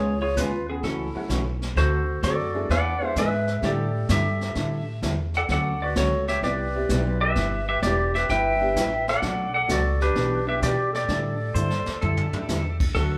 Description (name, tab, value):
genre	country, western swing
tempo	129 BPM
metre	4/4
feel	swing 68% on 8ths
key	unclear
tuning	A4 = 441 Hz
part	clean lap steel guitar	melody	0.0-13.2 s	B3 to G5	-29 LUFS	equal	none
part	breathy clarinet	second line	0.0-13.2 s	C#4 to E5	-33 LUFS	equal	none
part	hollow-body jazz guitar	accompaniment	0.0-13.2 s	B2 to B4	-32 LUFS	equal	none
part	upright bass	bass	0.0-13.2 s	E1 to B2	-29 LUFS	equal	none
part	jazz brush drum kit	drums	0.4-13.2 s	brushed snare drum, crash cymbal, hi-hat, kick drum, snare drum, toms	-34 LUFS	equal	none
part	tack piano	accompaniment	1.1-12.5 s	F#3 to G#4	-35 LUFS	equal	none
part	pedal steel guitar	second line	11.5-12.8 s	A4 to C5	-34 LUFS	equal	none
room	wet large studio reverb, RT60 0.9 s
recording	band playing live in one room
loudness	-24 LUFS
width	mono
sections	0.0-13.0 A section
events	drum fill 11.6-12.5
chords	0.0 C#7; 0.8 F#m7/C#; 1.8 D7; 2.7 E7; 3.6 A7sus4; 5.5 Dmaj7; 6.4 Cmaj7; 7.4 G6; 8.3 Em7/G; 9.2 Bm7; 10.2 Em7/B; 11.1 A7sus4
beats	0.37 0.84 1.30 | 1.77 2.23 2.70 3.16 | 3.63 4.10 4.56 5.03 | 5.49 5.96 6.43 6.89 | 7.36 7.83 8.29 8.76 | 9.22 9.69 10.16 10.62 | 11.09 11.55 12.02 12.48 | 12.95